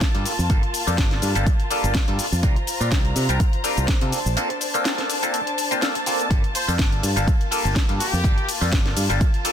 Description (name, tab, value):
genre	filtered disco house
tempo	124 BPM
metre	4/4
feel	swing 55% on 16ths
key	G minor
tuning	A4 = 439 Hz
part	bright clav	accompaniment	0.0-9.5 s	G3 to C5	-26 LUFS	left 1 dB	phaser, sidechain pumping
part	dark studio violin section	sustained chords	0.0-9.5 s	Bb3 to Bb5	-28 LUFS	left 1 dB	sidechain pumping
part	electronic kick drum	drums	0.0-9.3 s	none	-20 LUFS	equal	overdrive, studio ambience
part	house drum kit	drums	0.0-9.5 s	cabasa, hi-hat, ride cymbal, snare drum	-26 LUFS	left 2 dB	overdrive, sidechain pumping on hats, studio ambience, sidechain pumping on perc, sidechain pumping on cymbals
part	modern bright fingered electric bass	bass	0.1-9.2 s	G1 to C3	-23 LUFS	equal	sidechain pumping
part	brilliant trumpet section	melody	6.5-8.5 s	G4 to C5	-29 LUFS	left 1 dB	vintage 12-bit sampler grit, sidechain pumping, ping-pong delay
room	digital ambience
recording	dense, heavily limited modern master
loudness	-19 LUFS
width	side -9 dB against mid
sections	0.0-9.5 A section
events	kick drops out 4.4-6.3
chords	0.0 Gm9; 2.4 C7sus4; 4.1 Bbmaj9; 6.3 Gm9